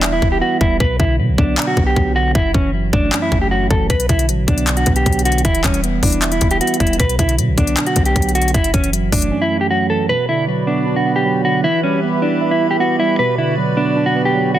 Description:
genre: hip hop, trap.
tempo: 155 BPM.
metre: 4/4.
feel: half-time.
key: B minor.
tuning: A4 = 440 Hz.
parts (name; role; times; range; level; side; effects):
mellow electric guitar; melody; 0.0-14.6 s; C#4 to B4; -18 LUFS; equal; ping-pong delay.
mellow tine electric piano; accompaniment; 0.0-14.6 s; F#2 to E5; -20 LUFS; right 4 dB; none.
warm 808-style bass; bass; 0.0-9.3 s; E1 to B2; -20 LUFS; left 1 dB; none.
trap drum kit; drums; 0.0-9.3 s; handclaps, hi-hat, kick drum; -18 LUFS; left 1 dB; soft clipping on snare.
hollow soft pad; sustained chords; 10.1-14.6 s; F#4 to B5; -23 LUFS; left 2 dB; chorus.
room: light reverb.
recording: dense, heavily limited modern master.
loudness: -14 LUFS.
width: side -12 dB against mid.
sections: 0.0-10.1 A section; 10.1-14.6 B section.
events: break 0.0-3.9.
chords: 0.0 Em; 0.8 Bm; 2.4 F#m7; 3.9 Bm; 5.4 Em; 7.0 Bm; 8.5 F#m7; 10.1 Bm; 11.6 Em; 13.2 Bm.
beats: 0.03 0.41 | 0.80 1.19 1.58 1.96 | 2.35 2.74 3.12 3.51 | 3.90 4.29 4.67 5.06 | 5.45 5.83 6.22 6.61 | 7.00 7.38 7.77 8.16 | 8.54 8.93 9.32 9.71 | 10.09 10.48 10.87 11.25 | 11.64 12.03 12.41 12.80 | 13.19 13.58 13.96 14.35.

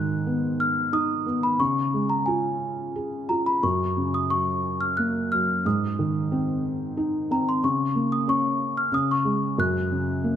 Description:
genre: children's music, lullaby.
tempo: 90 BPM.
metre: 3/4.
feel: rubato.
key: F# major.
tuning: A4 = 438 Hz.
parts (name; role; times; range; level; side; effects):
celesta; melody; 0.0-10.4 s; G#5 to F#6; -25 LUFS; left 1 dB; none.
felt-muted upright piano; accompaniment; 0.0-10.4 s; F#2 to G#4; -25 LUFS; equal; none.
room: moderate scoring stage reverb, RT60 2.2 s.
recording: none.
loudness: -22 LUFS.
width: side -9 dB against mid.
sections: 0.0-10.4 A section.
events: none.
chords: 0.0 G#m7; 1.6 C#; 3.6 F#; 5.7 G#; 7.6 C#5; 9.6 F#.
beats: 0.27 0.93 | 1.60 2.28 2.96 | 3.64 4.31 4.98 | 5.65 6.32 6.98 | 7.63 8.28 8.93 | 9.58 10.25.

